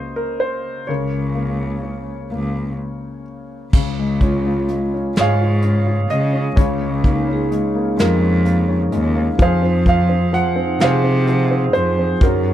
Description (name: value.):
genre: acoustic folk-pop ballad.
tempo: 42 BPM (dotted quarters).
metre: 6/8.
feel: straight.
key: Db major.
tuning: A4 = 440 Hz.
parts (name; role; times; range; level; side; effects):
warm grand piano; melody; 0.0-12.5 s; Db3 to Gb5; -20 LUFS; equal; none.
warm cello; bass; 0.9-12.5 s; Db2 to Db3; -19 LUFS; equal; none.
soft brush drum kit; drums; 3.7-12.4 s; crash cymbal, hi-hat, kick drum, snare drum; -16 LUFS; equal; none.
vibraphone with soft mallets; arpeggios; 4.2-12.5 s; Eb4 to C5; -25 LUFS; right 2 dB; none.
room: little or no reverb.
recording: close, detailed microphones.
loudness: -15 LUFS.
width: side -12 dB against mid.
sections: 0.0-3.7 A section; 3.7-12.5 B section.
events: none.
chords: 0.0 Gb6/Db; 0.9 Bbm/Db; 3.7 Db; 6.6 Bbm7/Db; 9.4 Fm.